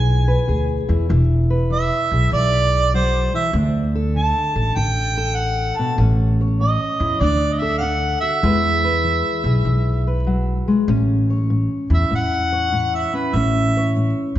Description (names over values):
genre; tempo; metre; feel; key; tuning
acoustic country blues, solo or duo; 98 BPM; 4/4; swing 66% on 8ths; A major; A4 = 441 Hz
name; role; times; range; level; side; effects
mellow harmonica; melody; 0.0-13.9 s; B4 to A5; -21 LUFS; right 2 dB; none
fingerpicked steel-string acoustic guitar; accompaniment; 0.0-14.4 s; A2 to C#5; -23 LUFS; left 2 dB; none
upright bass; bass; 0.0-14.4 s; E1 to E2; -19 LUFS; equal; none
room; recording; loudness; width
moderate concert hall reverb, RT60 2.1 s; recorded in a church or concert hall, vinyl crackle, nothing above 7.5 kHz; -16 LUFS; side -13 dB against mid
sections
0.0-10.9 A section; 10.9-14.4 B section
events
harmonica solo 10.9-14.4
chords
0.0 E; 3.5 D5; 6.0 A; 7.2 D; 8.4 E; 10.9 A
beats
0.48 | 1.09 1.71 2.32 2.93 | 3.54 4.16 4.77 5.38 | 5.99 6.60 7.21 7.82 | 8.43 9.04 9.66 10.27 | 10.88 11.49 12.11 12.72 | 13.33 13.95